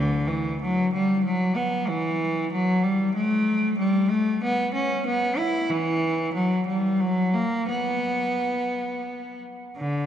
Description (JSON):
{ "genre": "classical, baroque-style suite movement for unaccompanied cello", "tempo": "85-96 BPM", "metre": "3/4", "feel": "rubato", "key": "unclear", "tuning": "A4 = 435 Hz", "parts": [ { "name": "bright cello", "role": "solo", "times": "0.0-10.1 s", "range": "D2 to E4", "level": "-22 LUFS", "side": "equal", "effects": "none" } ], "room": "wet cathedral reverb, RT60 4.1 s", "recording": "dark, warm production", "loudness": "-22 LUFS", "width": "side -10 dB against mid", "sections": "0.0-9.8 A section", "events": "none", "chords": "none" }